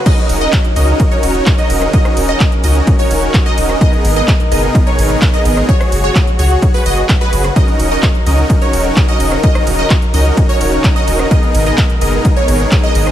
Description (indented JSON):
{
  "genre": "EDM, festival progressive house",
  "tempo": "128 BPM",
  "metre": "4/4",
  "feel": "straight",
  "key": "Eb minor",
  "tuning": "A4 = 440 Hz",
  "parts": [
    { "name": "muted studio string section", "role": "sustained chords", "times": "0.0-13.1 s", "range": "Cb3 to Bb4", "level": "-22 LUFS", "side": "left 1 dB", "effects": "sidechain pumping" },
    { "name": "wide unison pluck", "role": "arpeggios", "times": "0.1-13.1 s", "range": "Cb5 to Eb5", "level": "-20 LUFS", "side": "right 1 dB", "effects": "phaser, sidechain pumping, ping-pong delay" },
    { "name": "supersaw chords", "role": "riff", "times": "0.1-13.1 s", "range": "Cb4 to Eb5", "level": "-18 LUFS", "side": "equal", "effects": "sidechain pumping, ping-pong delay" },
    { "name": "big-room dance drum kit", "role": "drums", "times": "0.1-13.1 s", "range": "crash cymbal, handclaps, hi-hat, ride cymbal, rim click", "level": "-22 LUFS", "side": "right 1 dB", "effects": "overdrive" },
    { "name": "electronic kick drum", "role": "drums", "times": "0.1-12.8 s", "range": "none", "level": "-13 LUFS", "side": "equal", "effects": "overdrive" },
    { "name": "saturated sub bass", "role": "bass", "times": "0.3-13.1 s", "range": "Eb1 to Db2", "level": "-15 LUFS", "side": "equal", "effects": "sidechain pumping" }
  ],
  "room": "light reverb",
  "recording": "lossy compression artefacts",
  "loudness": "-10 LUFS",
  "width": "side -11 dB against mid",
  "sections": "0.0-13.1 A section",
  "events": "none",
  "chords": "0.1 Ebm7; 3.8 Abmadd9; 5.7 Gbsus2; 7.6 Ebm7; 11.3 Abmadd9"
}